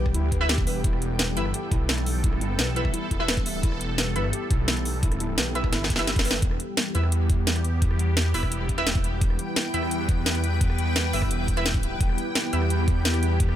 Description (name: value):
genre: dark technical drum and bass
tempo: 172 BPM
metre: 4/4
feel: straight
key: E minor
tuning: A4 = 440 Hz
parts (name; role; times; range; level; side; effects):
- sweeping resonant pad; sustained chords; 0.0-13.6 s; E3 to B4; -32 LUFS; right 1 dB; chorus, sidechain pumping
- felt-muted upright piano; arpeggios; 0.0-6.4 s; E4 to E5; -35 LUFS; left 1 dB; sidechain pumping, digital delay
- wide detuned saw bass; bass; 0.0-13.6 s; E1 to E2; -26 LUFS; equal; chorus, overdrive
- granular cloud pad; texture; 0.0-13.6 s; E4 to A5; -35 LUFS; left 1 dB; built-in reverb, sidechain pumping
- drum and bass drum kit; drums; 0.1-13.6 s; hi-hat, rim click, snare drum; -27 LUFS; equal; none
- electronic kick drum; drums; 0.1-13.5 s; none; -25 LUFS; equal; none
- orchestra-hit-like synth stab; stabs; 0.4-12.6 s; E4 to E5; -31 LUFS; right 1 dB; built-in reverb, digital delay
room: digital ambience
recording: none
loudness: -22 LUFS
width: side -11 dB against mid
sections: 0.0-6.4 A section; 6.4-13.6 A section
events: drop 0.0-6.4, 6.4-13.6; drum fill 5.7-6.4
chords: 0.0 Em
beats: 0.14 0.49 | 0.84 1.19 1.54 1.89 | 2.24 2.59 2.94 3.28 | 3.63 3.98 4.33 4.68 | 5.03 5.38 5.73 6.08 | 6.42 6.77 7.12 7.47 | 7.82 8.17 8.52 8.87 | 9.21 9.56 9.91 10.26 | 10.61 10.96 11.31 11.66 | 12.01 12.35 12.70 13.05 | 13.40